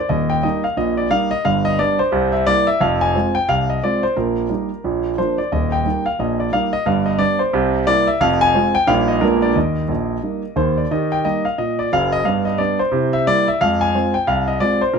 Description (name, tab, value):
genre	jazz, stride piano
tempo	178 BPM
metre	4/4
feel	swing 61% on 8ths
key	Eb major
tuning	A4 = 440 Hz
part	warm grand piano	solo	0.0-15.0 s	Eb1 to Ab5	-16 LUFS	equal	none
room	moderate echo chamber reverb, RT60 1.3 s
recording	close, detailed microphones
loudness	-16 LUFS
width	side -6 dB against mid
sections	0.1-10.9 A section; 10.9-15.0 A section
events	none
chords	0.1 Eb; 1.5 G; 2.1 C7; 2.8 Fm; 4.2 Eb/Bb; 4.8 Bb; 5.5 Eb; 6.9 G; 7.5 C7; 8.2 Fm; 8.9 Eb/Bb; 9.2 Bb7b9; 9.6 Eb; 12.3 G; 12.9 C7; 13.6 Fm